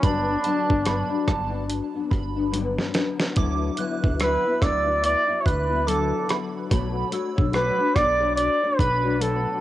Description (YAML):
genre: indie pop, bedroom pop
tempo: 72 BPM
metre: 4/4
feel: swing 60% on 16ths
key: D major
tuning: A4 = 440 Hz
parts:
  - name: warm flugelhorn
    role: melody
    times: 0.0-9.6 s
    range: D4 to D5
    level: -23 LUFS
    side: right 1 dB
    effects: analog chorus, cassette tape
  - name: soft synth bell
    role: second line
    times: 0.0-9.0 s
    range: A5 to F#6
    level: -34 LUFS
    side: right 7 dB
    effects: phaser, analog chorus, cassette tape, tape echo
  - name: nylon-string guitar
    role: accompaniment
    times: 0.0-9.6 s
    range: G2 to C#5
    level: -27 LUFS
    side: left 6 dB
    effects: ensemble chorus, vibrato effect, cassette tape
  - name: chorused synth bass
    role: bass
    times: 0.0-9.5 s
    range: G1 to D2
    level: -28 LUFS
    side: right 1 dB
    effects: transformer saturation
  - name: dusty soul sampler-style drum kit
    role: drums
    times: 0.0-9.4 s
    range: hi-hat, kick drum, rim click, snare drum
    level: -24 LUFS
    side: right 1 dB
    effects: cassette tape
room: light reverb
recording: home recording on cassette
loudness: -20 LUFS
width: side -14 dB against mid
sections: 0.0-9.6 A section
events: drum fill 2.5-3.4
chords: 0.0 Gmaj7; 3.4 D69; 6.7 Bm9